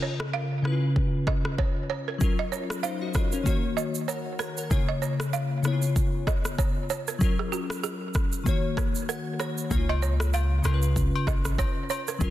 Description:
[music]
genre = afrobeats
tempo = 96 BPM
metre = 4/4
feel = swing 58% on 16ths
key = Db major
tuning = A4 = 439 Hz
[part]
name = glassy digital keys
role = accompaniment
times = 0.0-12.3 s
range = Db3 to Bb5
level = -29 LUFS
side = left 2 dB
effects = chorus
[part]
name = balafon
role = riff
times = 0.0-12.2 s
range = Gb4 to F5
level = -33 LUFS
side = right 8 dB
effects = tape echo
[part]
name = afro-pop drum kit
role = drums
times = 0.2-12.3 s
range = kick drum, rim click, shaker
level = -28 LUFS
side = equal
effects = none
[part]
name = punchy sub bass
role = bass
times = 9.7-12.3 s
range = Gb1 to Db2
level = -25 LUFS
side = equal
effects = none
[part]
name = agogo bells and woodblock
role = percussion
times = 9.9-12.1 s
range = none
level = -36 LUFS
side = left 6 dB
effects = none
[sound]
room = light reverb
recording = dense, heavily limited modern master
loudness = -24 LUFS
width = side -13 dB against mid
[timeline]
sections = 0.0-12.3 A section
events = synth keys fill 8.8-9.7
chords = 0.0 Db6; 0.6 Db7; 2.2 Gbmaj7; 3.5 Ebm7; 4.7 Db6; 5.6 Db7; 7.2 Gbmaj7; 8.5 Ebm7; 9.7 Db6; 10.6 Db7

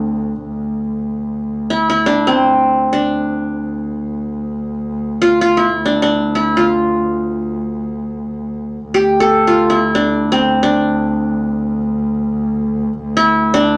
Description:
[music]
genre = Turkish makam ensemble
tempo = free time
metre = none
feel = none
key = D makam huseyni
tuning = A4 = 440 Hz
[part]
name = qanun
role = melody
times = 0.0-13.8 s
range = A3 to A4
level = -16 LUFS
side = equal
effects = none
[part]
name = rich double bass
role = drone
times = 0.0-13.8 s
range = D2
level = -22 LUFS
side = equal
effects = none
[sound]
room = wet studio ambience, RT60 0.5 s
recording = none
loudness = -16 LUFS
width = mono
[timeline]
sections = 0.0-13.8 A section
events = none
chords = none

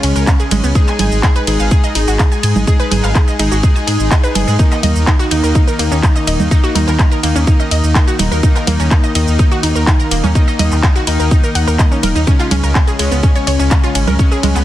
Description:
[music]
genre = melodic techno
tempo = 125 BPM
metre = 4/4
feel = straight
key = unclear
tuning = A4 = 441 Hz
[part]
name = wide unison pluck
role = arpeggios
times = 0.0-14.6 s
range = Ab3 to Ab5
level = -20 LUFS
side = right 1 dB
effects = sidechain pumping, tape echo
[part]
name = analog synth brass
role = stabs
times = 0.0-14.6 s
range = Db3 to Ab4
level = -18 LUFS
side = left 2 dB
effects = chorus, cassette tape, sidechain pumping, tape echo
[part]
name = dark detuned saw bass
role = bass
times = 0.0-14.6 s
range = Eb1 to Ab2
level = -15 LUFS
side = equal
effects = tube saturation, sidechain pumping
[part]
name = house drum kit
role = drums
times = 0.0-14.6 s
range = congas, handclaps, hi-hat, ride cymbal, shaker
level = -19 LUFS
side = right 2 dB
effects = small room ambience
[part]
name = electronic kick drum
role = drums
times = 0.3-14.3 s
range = none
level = -11 LUFS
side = equal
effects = small room ambience
[part]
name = swell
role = sound effects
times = 3.8-4.6 s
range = none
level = -25 LUFS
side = left 2 dB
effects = none
[sound]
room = light reverb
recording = dense, heavily limited modern master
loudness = -10 LUFS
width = side -13 dB against mid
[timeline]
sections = 0.0-14.6 A section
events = swell 3.8-4.6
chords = 0.0 Db5; 0.8 Ab5; 4.6 Eb5; 12.3 Db5

